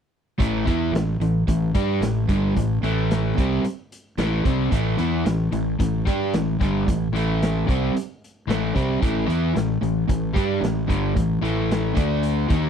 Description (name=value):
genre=classic rock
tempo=112 BPM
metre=4/4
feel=straight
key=A minor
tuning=A4 = 440 Hz
part: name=overdriven semi-hollow guitar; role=riff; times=0.4-12.7 s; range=G2 to G4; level=-24 LUFS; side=left 10 dB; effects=none
part: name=overdriven semi-hollow guitar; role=riff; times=0.4-12.7 s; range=G2 to G4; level=-25 LUFS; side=right 12 dB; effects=none
part: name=fuzz fingered electric bass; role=bass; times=0.4-12.7 s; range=G1 to G2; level=-27 LUFS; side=equal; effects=overdrive
part: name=raw garage drum kit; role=drums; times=0.4-12.6 s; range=hi-hat, kick drum, snare drum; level=-26 LUFS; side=equal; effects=none
room=little or no reverb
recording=dry, close 1970s-style studio recording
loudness=-20 LUFS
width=side -8 dB against mid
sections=0.4-12.7 A section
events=none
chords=0.4 Am; 12.0 D5